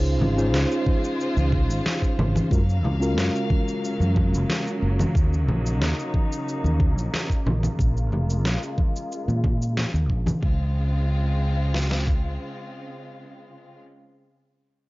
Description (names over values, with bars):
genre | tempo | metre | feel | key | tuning
sunset chillout | 91 BPM | 4/4 | straight | Db major | A4 = 437 Hz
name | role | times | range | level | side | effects
mellow tine electric piano | accompaniment | 0.0-5.2 s | Ab3 to C5 | -26 LUFS | equal | auto-pan, vintage 12-bit sampler grit, analog delay
rich chamber string section | sustained chords | 0.0-13.8 s | Db3 to F5 | -32 LUFS | left 1 dB | low-pass filter
fingered electric bass | bass | 0.0-12.4 s | F1 to Bb2 | -22 LUFS | equal | none
electronic cabasa, snare drum and congas | drums | 0.1-10.4 s | none | -29 LUFS | equal | none
congas | percussion | 0.2-10.4 s | none | -30 LUFS | left 1 dB | none
smooth R&B drum kit | drums | 0.9-12.2 s | kick drum, snare drum | -23 LUFS | equal | none
room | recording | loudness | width
digital ambience | dry, gritty hardware recording, cassette tape, nothing above 7.5 kHz | -21 LUFS | side -21 dB against mid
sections
0.0-10.4 A section; 10.4-13.1 B section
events
filter sweep on string section 0.0-10.4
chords
0.0 Dbmaj7; 2.5 Gbmaj7; 5.2 Ebm7; 7.8 Bbm7; 10.4 Dbmaj7